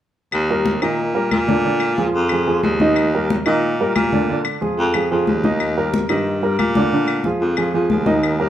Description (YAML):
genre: Afro-Cuban jazz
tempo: 182 BPM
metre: 4/4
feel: straight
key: Eb major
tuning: A4 = 440 Hz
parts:
  - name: clear baritone saxophone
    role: bass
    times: 0.3-8.5 s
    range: Eb2 to Bb2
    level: -20 LUFS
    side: equal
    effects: none
  - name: claves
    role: percussion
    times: 0.3-8.4 s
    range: none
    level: -28 LUFS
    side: left 7 dB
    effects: none
  - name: congas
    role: percussion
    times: 0.3-8.5 s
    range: none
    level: -23 LUFS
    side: left 2 dB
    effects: none
  - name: warm upright piano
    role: accompaniment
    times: 0.5-8.5 s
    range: D3 to Eb5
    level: -19 LUFS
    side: right 1 dB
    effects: none
room: moderate stone room reverb, RT60 1.2 s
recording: band playing live in one room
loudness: -16 LUFS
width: side -11 dB against mid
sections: 0.3-8.5 A section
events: none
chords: 0.3 Ebmaj7; 1.6 Bb7; 3.0 Ebmaj7; 4.3 Bb7; 5.6 Ebmaj7; 6.9 Bb7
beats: | 0.33 0.66 0.99 1.32 | 1.65 1.98 2.31 2.64 | 2.96 3.29 3.62 3.95 | 4.28 4.61 4.94 5.27 | 5.60 5.93 6.26 6.59 | 6.92 7.25 7.58 7.91 | 8.24